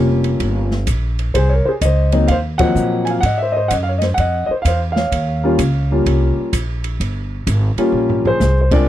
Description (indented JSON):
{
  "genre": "jazz piano trio",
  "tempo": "128 BPM",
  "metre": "4/4",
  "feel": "swing 66% on 8ths",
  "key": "Eb mixolydian",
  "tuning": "A4 = 440 Hz",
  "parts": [
    { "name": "warm concert grand piano", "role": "melody", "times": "0.0-8.9 s", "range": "F3 to Ab5", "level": "-17 LUFS", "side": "left 1 dB", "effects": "none" },
    { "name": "upright bass", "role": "bass", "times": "0.0-8.9 s", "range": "F1 to Bb2", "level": "-17 LUFS", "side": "equal", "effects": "none" },
    { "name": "open jazz drum kit", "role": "drums", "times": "0.2-8.8 s", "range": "hi-hat, kick drum, ride cymbal, snare drum, toms", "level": "-25 LUFS", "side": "right 1 dB", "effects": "none" }
  ],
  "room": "little or no reverb",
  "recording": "dry, close 1970s-style studio recording",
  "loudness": "-14 LUFS",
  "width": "side -12 dB against mid",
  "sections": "0.0-8.9 A section",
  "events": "band accent 2.5, 8.6; drum fill 7.9-8.4",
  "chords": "0.0 Eb9 (rootless); 1.4 Ab9; 5.1 Eb9"
}